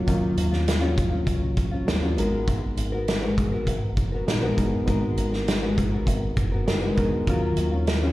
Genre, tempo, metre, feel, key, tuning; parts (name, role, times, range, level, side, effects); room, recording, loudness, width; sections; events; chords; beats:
indie pop, bedroom pop; 100 BPM; 4/4; straight; A4 = 438 Hz
nylon-string guitar; accompaniment; 0.0-8.1 s; Eb3 to Bb4; -28 LUFS; left 2 dB; analog chorus, vibrato effect
reed electric piano; accompaniment; 0.0-8.1 s; Gb3 to Bb4; -30 LUFS; right 1 dB; cassette tape
chorused synth bass; bass; 0.0-8.1 s; Gb1 to Eb2; -26 LUFS; equal
loose indie drum kit; drums; 0.1-8.0 s; hi-hat, kick drum, snare drum; -26 LUFS; equal
studio reverb; live gig heard through the venue's PA, recital hall reverb; -21 LUFS; side -16 dB against mid
0.0-8.1 A section
0.0 Ebm9; 2.2 Abm9; 7.3 Ebm9
| 0.08 0.68 1.28 1.88 | 2.48 3.08 3.68 4.28 | 4.88 5.48 6.08 6.68 | 7.28 7.88